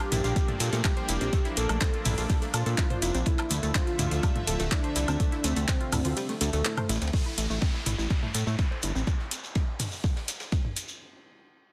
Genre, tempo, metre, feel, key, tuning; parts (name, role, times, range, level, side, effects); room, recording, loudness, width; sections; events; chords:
melodic techno; 124 BPM; 4/4; straight; A phrygian; A4 = 440 Hz
unison lead; melody; 0.0-7.0 s; A3 to A4; -36 LUFS; equal; sidechain pumping, delay
sweeping resonant pad; sustained chords; 0.0-7.1 s; D3 to E5; -40 LUFS; equal; chorus, sidechain pumping
analog pluck; arpeggios; 0.0-9.0 s; G3 to C6; -38 LUFS; equal; chorus, sidechain pumping, dub echo
deep house drum kit; drums; 0.0-10.9 s; handclaps, hi-hat, toms, woodblock; -34 LUFS; equal; small room ambience
warm soul drum kit; drums; 0.0-10.9 s; hi-hat, ride cymbal, snare drum; -46 LUFS; equal
fat analog bass; bass; 0.1-9.0 s; D1 to Bb2; -31 LUFS; equal; sidechain pumping
shekere; percussion; 0.1-11.0 s; -41 LUFS; equal
electronic kick drum; drums; 0.4-10.6 s; -29 LUFS; equal; small room ambience
downlifter; sound effects; 7.1-11.0 s; -42 LUFS; equal
small room reverb; dense, heavily limited modern master; -28 LUFS; mono
0.0-7.1 A section; 7.1-11.0 B section
drop 0.0-7.1; kick drops out 6.2-7.1
0.0 Bb; 3.3 Dmadd9; 7.1 A5